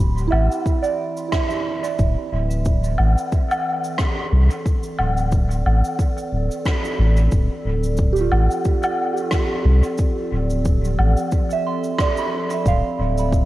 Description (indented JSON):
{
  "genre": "ambient dub",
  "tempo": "90 BPM",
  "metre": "4/4",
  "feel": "swing 56% on 16ths",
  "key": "unclear",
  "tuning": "A4 = 437 Hz",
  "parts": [
    { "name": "warbly tape-like pad", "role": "sustained chords", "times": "0.0-13.5 s", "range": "E3 to D5", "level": "-28 LUFS", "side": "equal", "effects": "chorus, built-in reverb, cassette tape" },
    { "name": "soft synth bell", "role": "arpeggios", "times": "0.0-13.5 s", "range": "E4 to C6", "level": "-25 LUFS", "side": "right 7 dB", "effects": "chorus, phaser, cassette tape, tape echo" },
    { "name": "warm sub bass", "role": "bass", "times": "0.0-13.5 s", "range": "D1 to C2", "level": "-18 LUFS", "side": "equal", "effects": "tube saturation" },
    { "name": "cabasa, woodblock and rim click", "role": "drums", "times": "0.2-13.5 s", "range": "none", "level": "-26 LUFS", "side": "left 1 dB", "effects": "small room reverb, cassette tape, dub echo" },
    { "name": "electronic kick drum", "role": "drums", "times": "0.7-13.5 s", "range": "none", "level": "-20 LUFS", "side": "equal", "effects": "small room reverb, cassette tape" }
  ],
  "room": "small room ambience",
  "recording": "home recording on cassette",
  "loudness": "-18 LUFS",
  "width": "side -16 dB against mid",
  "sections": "0.0-13.5 A section",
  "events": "none",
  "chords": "0.0 Cadd9/D; 7.3 Dm7"
}